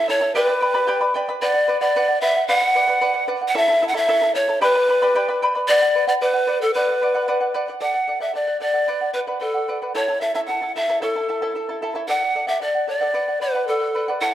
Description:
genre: andean folk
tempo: 113 BPM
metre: 2/4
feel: straight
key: B minor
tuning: A4 = 443 Hz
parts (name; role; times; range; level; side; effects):
- breathy mellow pan flute; melody; 0.0-14.3 s; A4 to F#5; -19 LUFS; equal; none
- charango; accompaniment; 0.0-14.3 s; E4 to B5; -23 LUFS; right 1 dB; none
room: moderate recital hall reverb, RT60 1.6 s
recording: dark, warm production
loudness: -18 LUFS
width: side -12 dB against mid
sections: 0.0-7.8 A section; 7.8-14.3 B section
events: none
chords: 0.4 G; 1.4 Bm; 3.6 A; 4.6 G; 5.7 Bm; 7.8 D; 8.9 Bm; 9.9 A; 12.1 D; 13.1 Bm

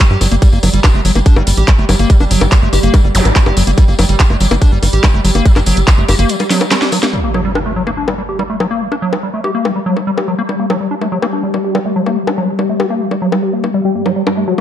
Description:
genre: psychedelic trance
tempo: 143 BPM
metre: 4/4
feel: straight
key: G harmonic minor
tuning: A4 = 436 Hz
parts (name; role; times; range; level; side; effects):
- bubbling stepped-filter texture; sustained chords; 0.0-14.6 s; G3; -20 LUFS; left 1 dB; chorus, built-in reverb, sidechain pumping
- liquid acid bass; riff; 0.0-14.6 s; F#3 to G4; -17 LUFS; moving between left 3 dB and right 4 dB; chorus, auto-pan, sidechain pumping, dub echo
- drum and bass drum kit; drums; 0.0-14.6 s; bongos, handclaps, hi-hat, snare drum; -18 LUFS; left 2 dB; small room reverb
- electronic kick drum; drums; 0.0-6.0 s; none; -9 LUFS; equal; small room reverb
- tambourine; percussion; 0.0-7.1 s; none; -26 LUFS; left 5 dB; none
- tight sequencer bass; bass; 0.1-6.3 s; G1 to G2; -13 LUFS; equal; none
- zap and impact; sound effects; 3.1-3.3, 7.1-8.8 s; none; -22 LUFS; equal; none
- wide unison lead; melody; 13.8-14.6 s; G3 to G4; -18 LUFS; left 1 dB; phaser, sidechain pumping
room: light reverb, digital ambience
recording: dark, warm production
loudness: -11 LUFS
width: side -11 dB against mid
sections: 0.0-7.1 A section; 7.1-14.6 B section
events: break 6.3-7.1; drum fill 6.5-7.1; impact 7.1-8.8; filter sweep on synth texture 7.1-14.6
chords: 0.0 G5

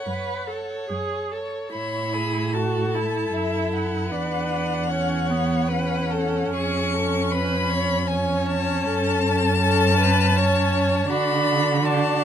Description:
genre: classical, slow romantic movement for string quartet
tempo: 70-81 BPM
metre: 3/4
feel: rubato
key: A major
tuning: A4 = 442 Hz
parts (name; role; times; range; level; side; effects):
- rich violin; melody; 0.0-12.2 s; E5 to C#6; -26 LUFS; left 6 dB; none
- rich violin; second line; 0.0-12.2 s; F#4 to C#5; -27 LUFS; left 3 dB; none
- rich viola; accompaniment; 0.1-12.2 s; B3 to B4; -26 LUFS; right 3 dB; none
- warm cello; bass; 0.1-12.2 s; E2 to D3; -24 LUFS; right 3 dB; none
room: little or no reverb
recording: close, detailed microphones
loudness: -20 LUFS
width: side -9 dB against mid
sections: 0.0-1.7 A section; 1.7-12.2 B section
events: none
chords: 0.0 F#m; 1.7 A5; 4.1 Esus2; 6.5 C#7/E#; 8.8 F#m; 11.1 D

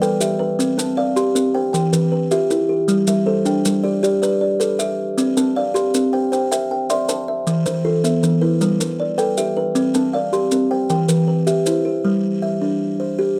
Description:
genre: southern african traditional, mbira-style interlocking cycle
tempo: 105 BPM (dotted quarters)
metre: 12/8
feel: straight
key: G mixolydian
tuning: A4 = 440 Hz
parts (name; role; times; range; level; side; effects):
- buzzing kalimba; arpeggios; 0.0-13.4 s; E3 to C6; -21 LUFS; equal; none
- kalimba; arpeggios; 0.0-12.4 s; E3 to C6; -23 LUFS; equal; none
- maracas; percussion; 0.0-11.8 s; none; -29 LUFS; equal; none
room: light reverb, small room ambience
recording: dry, close 1970s-style studio recording, faint mains hum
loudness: -19 LUFS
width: mono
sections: 0.0-12.0 A section; 12.0-13.4 B section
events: none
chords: 0.0 G; 0.6 C; 1.7 Em; 2.9 G; 5.2 C; 7.5 E5; 8.6 G; 9.8 C; 10.9 Em; 12.0 G5

